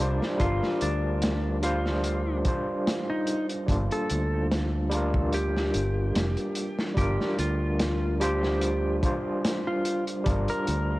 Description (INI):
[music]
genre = trip hop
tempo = 73 BPM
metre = 4/4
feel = swing 55% on 16ths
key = G minor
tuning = A4 = 440 Hz
[part]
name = clean lap steel guitar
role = melody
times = 0.0-11.0 s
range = D4 to Bb4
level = -32 LUFS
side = equal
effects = tape echo
[part]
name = overdriven tine electric piano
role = accompaniment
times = 0.0-11.0 s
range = G3 to C5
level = -29 LUFS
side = equal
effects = medium tremolo, tape echo
[part]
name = fingered electric bass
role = bass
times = 0.0-11.0 s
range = F1 to D2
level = -28 LUFS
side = equal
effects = transformer saturation
[part]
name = crunchy breakbeat drum kit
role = drums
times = 0.2-10.9 s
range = hi-hat, kick drum, snare drum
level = -30 LUFS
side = equal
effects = none
[sound]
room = light reverb, small room ambience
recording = worn, warbling old tape, cassette tape, warbly pitch drift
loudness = -24 LUFS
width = side -18 dB against mid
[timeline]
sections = 0.0-11.0 A section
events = none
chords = 0.0 Gm7